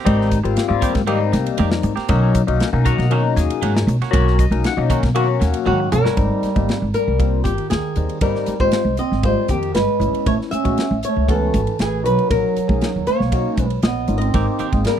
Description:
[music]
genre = electric jazz fusion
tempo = 118 BPM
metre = 4/4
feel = straight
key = Ab major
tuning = A4 = 438 Hz
[part]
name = clean electric guitar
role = stabs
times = 0.0-6.2, 14.3-14.8 s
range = Eb3 to G4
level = -27 LUFS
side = right 11 dB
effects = lush chorus
[part]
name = barky tine electric piano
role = accompaniment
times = 0.1-14.9 s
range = F#3 to Bb5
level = -22 LUFS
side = left 10 dB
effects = overdrive, phaser
[part]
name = upright bass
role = bass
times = 0.1-14.8 s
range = G1 to B2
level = -19 LUFS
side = right 1 dB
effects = none
[part]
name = modern studio drum kit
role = drums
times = 0.1-15.0 s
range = hi-hat, kick drum, ride cymbal, snare drum, toms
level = -23 LUFS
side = equal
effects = none
[part]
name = flamenco guitar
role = melody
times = 5.7-15.0 s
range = F#4 to E5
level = -22 LUFS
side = left 2 dB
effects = slapback echo
[part]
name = mellow bass clarinet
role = second line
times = 5.7-15.0 s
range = Eb3 to C#4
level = -24 LUFS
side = right 10 dB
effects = none
[sound]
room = studio reverb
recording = dry, close 1970s-style studio recording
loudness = -16 LUFS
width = side -9 dB against mid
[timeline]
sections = 0.0-6.2 A section; 6.2-15.0 B section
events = tine electric piano fill 1.3-2.1; drum fill 5.7-6.2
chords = 0.0 Abmaj9; 2.1 Bmaj9; 6.2 Abmaj9; 10.0 Amaj9; 12.0 Bmaj9; 14.3 Abmaj9

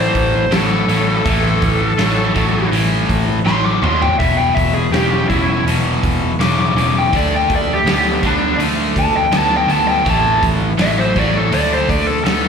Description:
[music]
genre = blues rock power trio and southern rock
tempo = 82 BPM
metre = 4/4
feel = straight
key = unclear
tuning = A4 = 441 Hz
[part]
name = dark smooth lead guitar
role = melody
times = 0.0-12.5 s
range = D4 to D6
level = -18 LUFS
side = left 1 dB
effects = overdrive, slapback echo, plate reverb
[part]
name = cranked stack guitar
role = riff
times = 0.0-12.5 s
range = E2 to B3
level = -18 LUFS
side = equal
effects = overdrive, slapback echo
[part]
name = vintage muted picked electric bass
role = bass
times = 0.0-12.5 s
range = E1 to D#2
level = -20 LUFS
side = equal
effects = none
[part]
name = huge arena drum kit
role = drums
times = 0.1-12.4 s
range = hi-hat, kick drum, snare drum, toms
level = -20 LUFS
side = equal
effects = none
[sound]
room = moderate club reverb, RT60 0.6 s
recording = live gig heard through the venue's PA, club reverb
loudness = -13 LUFS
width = side -6 dB against mid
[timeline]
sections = 0.0-12.5 A section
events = lead electric guitar solo 0.0-12.5; drum fill 3.5-4.2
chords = 0.0 A5; 4.2 E5; 7.1 D5; 10.1 A5; 11.5 D5

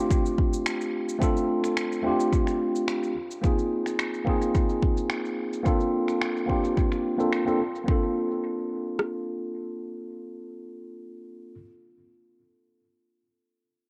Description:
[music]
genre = sunset chillout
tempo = 108 BPM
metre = 4/4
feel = straight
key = unclear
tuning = A4 = 440 Hz
[part]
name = tine electric piano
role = accompaniment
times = 0.0-11.6 s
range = A3 to A4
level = -29 LUFS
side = equal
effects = low-pass filter, analog delay
[part]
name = deep house drum kit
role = drums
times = 0.1-9.1 s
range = kick drum, rim click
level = -27 LUFS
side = equal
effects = overdrive
[part]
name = electronic cabasa and finger snaps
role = drums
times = 0.1-7.9 s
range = none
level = -36 LUFS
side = equal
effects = overdrive, low-pass filter on hats, low-pass filter on perc, low-pass filter on snare, analog delay
[sound]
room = wet spring reverb, RT60 2.3 s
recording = echo-heavy mix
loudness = -26 LUFS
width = mono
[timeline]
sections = 0.0-7.9 A section; 7.9-10.1 B section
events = filter sweep on tine electric piano 0.0-7.9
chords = 0.0 F69; 3.2 Ab6; 5.7 C7sus4; 7.9 Bbmaj9

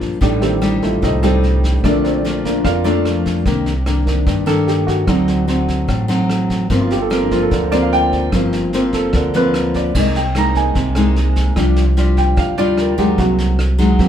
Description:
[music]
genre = bossa nova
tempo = 148 BPM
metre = 4/4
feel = straight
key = G minor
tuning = A4 = 440 Hz
[part]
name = nylon-string guitar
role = accompaniment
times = 0.0-14.1 s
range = F2 to F4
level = -18 LUFS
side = left 1 dB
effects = none
[part]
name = warm baby grand piano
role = accompaniment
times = 0.0-14.1 s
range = D3 to Bb5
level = -19 LUFS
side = right 2 dB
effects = none
[part]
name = upright bass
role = bass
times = 0.0-14.1 s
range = G1 to G2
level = -19 LUFS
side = equal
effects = none
[part]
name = vintage brush drum kit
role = drums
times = 0.0-14.1 s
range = crash cymbal, kick drum, rim click, snare drum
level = -23 LUFS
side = equal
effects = none
[sound]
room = wet studio reverb, RT60 0.6 s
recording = heard from further back in the room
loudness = -14 LUFS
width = side -9 dB against mid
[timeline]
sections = 0.0-9.9 A section; 9.9-14.1 A section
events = grand piano solo 0.0-14.1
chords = 0.2 F13/A; 1.8 Bbmaj7; 3.5 Cm9; 5.1 D7b9; 6.7 Gm7; 9.9 Abmaj9/C; 11.6 G7sus4/C; 13.2 Ab7/C

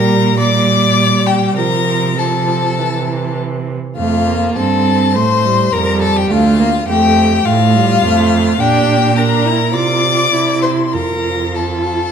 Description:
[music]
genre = quick classical-period movement for string quartet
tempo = 102 BPM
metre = 4/4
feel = uneven beats, rubato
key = F major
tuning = A4 = 439 Hz
[part]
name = rich violin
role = melody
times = 0.0-12.1 s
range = F5 to D6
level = -17 LUFS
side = left 10 dB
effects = none
[part]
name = rich violin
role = second line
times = 0.0-12.1 s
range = F4 to D5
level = -20 LUFS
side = left 2 dB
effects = none
[part]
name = rich viola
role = accompaniment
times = 0.0-12.1 s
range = E3 to F4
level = -16 LUFS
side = right 2 dB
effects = none
[part]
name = rich cello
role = bass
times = 0.0-12.1 s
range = D2 to C3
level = -17 LUFS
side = right 5 dB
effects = none
[sound]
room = wet recital hall reverb, RT60 1.5 s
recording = none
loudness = -11 LUFS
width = side -7 dB against mid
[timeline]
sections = 0.0-12.1 A section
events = none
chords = 0.0 Gm/Bb; 1.6 F/C; 2.8 C; 4.0 F; 6.3 Dm; 8.6 Gm/Bb; 9.7 F5/C; 10.3 C; 10.9 F

